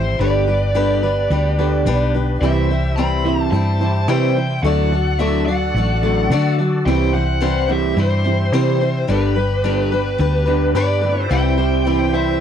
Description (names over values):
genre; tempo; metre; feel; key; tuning
folk rock and heartland rock; 108 BPM; 4/4; straight; C lydian; A4 = 440 Hz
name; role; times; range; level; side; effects
bluesy overdriven lead guitar; melody; 0.0-12.4 s; B4 to B5; -23 LUFS; equal; distortion
picked swing-style acoustic guitar; accompaniment; 0.0-12.4 s; C3 to D5; -22 LUFS; left 7 dB; none
bright tonewheel organ; sustained chords; 0.0-12.4 s; A3 to D5; -30 LUFS; right 1 dB; chorus vibrato, slow rotary speaker
electric guitar through a small old amp; riff; 0.0-12.4 s; G2 to C4; -22 LUFS; right 3 dB; none
hollow-body short-scale fingered electric bass; bass; 0.0-12.4 s; G1 to D3; -19 LUFS; equal; none
room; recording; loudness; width
little or no reverb; dry, close 1970s-style studio recording; -15 LUFS; side -8 dB against mid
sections
0.0-11.3 A section; 11.3-12.4 B section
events
none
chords
0.2 G; 2.4 C; 4.6 D; 6.9 C; 9.1 G; 11.3 C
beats
| 0.20 0.75 1.31 1.86 | 2.42 2.98 3.53 4.09 | 4.64 5.20 5.75 6.31 | 6.87 7.42 7.98 8.54 | 9.09 9.65 10.20 10.76 | 11.32 11.87